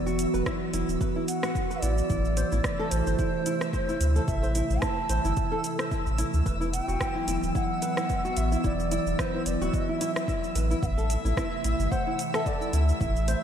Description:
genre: organic downtempo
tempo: 110 BPM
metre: 4/4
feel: swing 55% on 16ths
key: unclear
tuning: A4 = 440 Hz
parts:
  - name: hollow bansuri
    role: melody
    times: 0.0-13.4 s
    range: C5 to A5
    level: -33 LUFS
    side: right 1 dB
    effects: ping-pong delay
  - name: warbly tape-like pad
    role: sustained chords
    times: 0.0-13.4 s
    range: C3 to F#4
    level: -31 LUFS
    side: right 1 dB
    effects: chorus, built-in reverb, sidechain pumping
  - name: warm sub bass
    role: bass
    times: 0.0-13.3 s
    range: D1 to D2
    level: -27 LUFS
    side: equal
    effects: sidechain pumping
  - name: twinkling granular texture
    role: texture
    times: 0.0-13.4 s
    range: E5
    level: -40 LUFS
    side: equal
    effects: built-in reverb, lush chorus
  - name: flamenco guitar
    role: arpeggios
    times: 0.1-13.4 s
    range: E4 to C5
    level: -34 LUFS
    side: left 1 dB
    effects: diffuse ambient delay
  - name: afro-pop drum kit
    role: drums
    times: 0.1-13.4 s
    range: hi-hat, rim click, shaker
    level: -36 LUFS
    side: right 2 dB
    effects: none
  - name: electronic kick drum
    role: drums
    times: 0.5-13.1 s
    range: none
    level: -31 LUFS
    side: equal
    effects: none
room: moderate lush hall reverb, RT60 2.2 s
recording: dreamy mix soaked in reverb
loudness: -24 LUFS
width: side -9 dB against mid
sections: 0.0-13.4 A section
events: none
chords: 0.0 Esus2; 2.1 Am; 6.5 Esus2; 10.8 Am

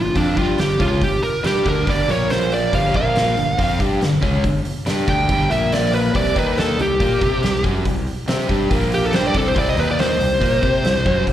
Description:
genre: blues rock power trio and southern rock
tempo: 140 BPM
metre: 4/4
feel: straight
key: unclear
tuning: A4 = 440 Hz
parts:
  - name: fuzz lead guitar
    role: melody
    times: 0.0-11.2 s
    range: D4 to G5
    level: -20 LUFS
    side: right 1 dB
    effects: distortion, plate reverb, slapback echo
  - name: biting overdriven guitar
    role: riff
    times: 0.0-11.3 s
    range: G2 to C5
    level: -22 LUFS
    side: left 1 dB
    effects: slapback echo
  - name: fuzz fingered electric bass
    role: bass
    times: 0.0-11.3 s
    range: G1 to C3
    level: -22 LUFS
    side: equal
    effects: overdrive
  - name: oversized low-tuned drum kit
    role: drums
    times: 0.2-11.3 s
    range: hi-hat, kick drum, snare drum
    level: -23 LUFS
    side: equal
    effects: none
room: light reverb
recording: live gig heard through the venue's PA, recital hall reverb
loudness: -16 LUFS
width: side -11 dB against mid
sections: 0.0-11.3 A section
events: lead electric guitar solo 0.0-11.3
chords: 0.0 G5; 2.1 Bb5; 2.7 G5; 2.9 Bb5; 3.4 G5; 5.5 Bb5; 6.1 C5; 6.4 Eb5; 6.8 C5; 8.7 Bb5; 9.1 C5; 9.8 Eb5; 10.2 C5

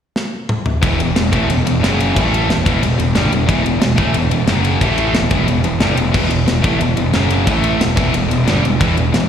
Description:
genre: heavy metal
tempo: 180 BPM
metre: 4/4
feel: straight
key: E minor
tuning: A4 = 441 Hz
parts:
  - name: tight metal drum kit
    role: drums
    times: 0.2-9.2 s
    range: crash cymbal, kick drum, ride cymbal, snare drum, toms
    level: -19 LUFS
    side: equal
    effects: none
  - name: heavy high-gain guitar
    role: riff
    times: 0.8-9.3 s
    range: E2 to A3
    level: -19 LUFS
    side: left 11 dB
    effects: distortion, slapback echo
  - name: sludgy distorted guitar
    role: riff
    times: 0.8-9.3 s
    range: E2 to A3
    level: -19 LUFS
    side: right 9 dB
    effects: overdrive
  - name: fuzz picked electric bass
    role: bass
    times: 0.8-9.3 s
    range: E1 to A1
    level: -18 LUFS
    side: equal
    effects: overdrive
room: light reverb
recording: live gig heard through the venue's PA, recital hall reverb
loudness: -13 LUFS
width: side -8 dB against mid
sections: 0.8-9.3 A section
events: drum fill 0.1-0.8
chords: 0.0 N.C.; 0.8 E5; 1.8 F#5; 2.1 A5; 2.5 Em; 4.5 F#5; 4.8 A5; 5.1 Em; 7.1 F#5; 7.5 A5; 7.8 Em

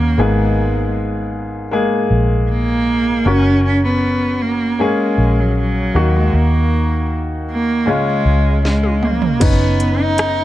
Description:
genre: pop ballad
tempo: 78 BPM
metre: 4/4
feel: straight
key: F# major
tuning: A4 = 443 Hz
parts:
  - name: warm cello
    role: melody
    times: 0.0-10.4 s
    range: F#3 to D#4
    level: -18 LUFS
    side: right 1 dB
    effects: none
  - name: clear concert grand piano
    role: accompaniment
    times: 0.0-10.4 s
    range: G#2 to A#4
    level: -19 LUFS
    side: left 2 dB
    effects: none
  - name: vintage muted fingered electric bass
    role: bass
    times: 0.0-10.4 s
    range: F#1 to D#2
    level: -17 LUFS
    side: equal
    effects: none
  - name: house drum kit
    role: drums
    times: 8.7-10.4 s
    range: crash cymbal, hi-hat, kick drum, rim click, snare drum, toms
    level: -18 LUFS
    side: right 1 dB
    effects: none
room: digital ambience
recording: dark, warm production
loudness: -14 LUFS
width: side -14 dB against mid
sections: 0.0-9.4 A section; 9.4-10.4 B section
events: drum fill 8.6-9.4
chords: 0.2 G#madd9; 3.3 F#; 6.0 D#m; 7.9 C#; 9.4 Badd9/F#

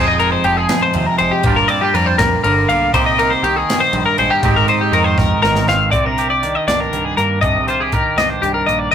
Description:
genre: math rock and midwest emo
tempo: 80 BPM (dotted quarters)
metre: 6/8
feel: straight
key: C minor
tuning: A4 = 440 Hz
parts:
  - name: twangy electric guitar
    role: accompaniment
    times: 0.0-8.9 s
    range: F2 to Ab4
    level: -18 LUFS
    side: right 3 dB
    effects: spring reverb
  - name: twelve-string electric guitar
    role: arpeggios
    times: 0.0-8.9 s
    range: G4 to F5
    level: -15 LUFS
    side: left 3 dB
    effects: vibrato effect
  - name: deep dub picked electric bass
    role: bass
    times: 0.0-8.9 s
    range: F1 to G2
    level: -22 LUFS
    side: equal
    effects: none
  - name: crisp fusion drum kit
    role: drums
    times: 0.2-8.8 s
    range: hi-hat, kick drum, ride cymbal, snare drum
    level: -22 LUFS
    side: right 1 dB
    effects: none
room: wet booth ambience, RT60 0.2 s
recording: rough rehearsal-room recording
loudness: -13 LUFS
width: side -8 dB against mid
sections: 0.0-5.9 A section; 5.9-8.9 B section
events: drum fill 5.2-5.9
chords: 0.0 Fm7; 1.4 Gm7; 2.9 Cm7; 4.4 Abmaj7; 5.9 Cm9

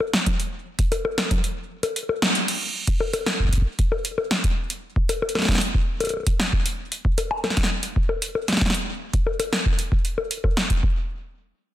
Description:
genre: IDM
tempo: 115 BPM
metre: 4/4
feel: straight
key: none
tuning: none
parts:
  - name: electro analog drum machine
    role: drums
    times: 0.0-10.8 s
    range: bongos, congas, crash cymbal, hi-hat, snare drum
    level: -23 LUFS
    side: left 1 dB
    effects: digital delay
  - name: electronic kick drum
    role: drums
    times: 0.3-10.9 s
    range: none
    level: -22 LUFS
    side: equal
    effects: none
room: light reverb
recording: dense, heavily limited modern master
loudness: -21 LUFS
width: side -13 dB against mid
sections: 0.0-2.5 A section; 2.5-10.8 B section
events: kick drops out 1.4-2.5; band accent 2.2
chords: none

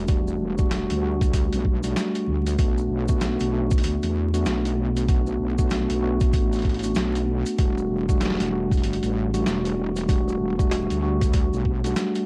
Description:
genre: glitch hop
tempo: 96 BPM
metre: 4/4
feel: swing 61% on 16ths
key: E minor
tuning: A4 = 440 Hz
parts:
  - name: mellow tine electric piano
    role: stabs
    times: 0.0-12.3 s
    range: G3 to F#4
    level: -27 LUFS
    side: equal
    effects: sidechain pumping, low-pass filter, tape echo
  - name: wobble bass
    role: bass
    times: 0.0-11.9 s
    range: E1 to E2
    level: -29 LUFS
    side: equal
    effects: chorus
  - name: boom bap sampler-style drum kit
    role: drums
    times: 0.1-12.3 s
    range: hi-hat, snare drum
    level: -33 LUFS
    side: equal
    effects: cassette tape
  - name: electronic kick drum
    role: drums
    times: 0.1-11.8 s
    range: none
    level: -25 LUFS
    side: equal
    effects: cassette tape
  - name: maracas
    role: percussion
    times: 0.1-12.2 s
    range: none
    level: -46 LUFS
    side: equal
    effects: none
room: digital ambience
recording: home recording on cassette, vinyl crackle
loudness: -23 LUFS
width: mono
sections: 0.0-12.3 A section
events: filter sweep on tine electric piano 0.0-12.3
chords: 0.0 Em11; 2.6 Bm7; 7.6 Em11

